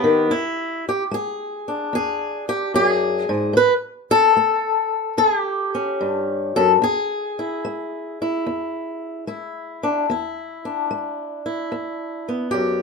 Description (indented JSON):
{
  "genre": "acoustic country blues, solo or duo",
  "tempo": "74 BPM",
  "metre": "4/4",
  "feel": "swing 68% on 8ths",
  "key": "E mixolydian",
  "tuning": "A4 = 440 Hz",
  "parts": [
    { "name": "fingerpicked swing-style acoustic guitar", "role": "solo", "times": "0.0-12.8 s", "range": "E2 to B4", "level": "-19 LUFS", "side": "left 2 dB", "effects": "none" }
  ],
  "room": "moderate studio reverb, RT60 0.6 s",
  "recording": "none",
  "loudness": "-19 LUFS",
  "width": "side -4 dB against mid",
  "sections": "0.3-12.8 A section",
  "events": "none",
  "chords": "0.3 E7; 3.6 A7; 6.8 E7"
}